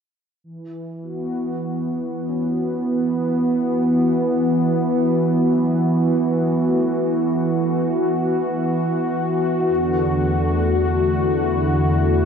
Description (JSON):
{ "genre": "ambient", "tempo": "free time", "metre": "none", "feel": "none", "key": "unclear", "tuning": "A4 = 440 Hz", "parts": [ { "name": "warm analog pad", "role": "sustained chords", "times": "0.4-12.3 s", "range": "E2 to F#4", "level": "-18 LUFS", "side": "equal", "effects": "chorus" }, { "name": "felt-muted upright piano", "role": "arpeggios", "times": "2.3-12.3 s", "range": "F#3 to F#5", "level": "-38 LUFS", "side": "left 1 dB", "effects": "none" } ], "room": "wet lush hall reverb, RT60 2.5 s", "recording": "dark, warm production", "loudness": "-18 LUFS", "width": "side -7 dB against mid", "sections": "0.5-12.3 A section", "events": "none", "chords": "0.5 Esus24; 9.7 D69/E" }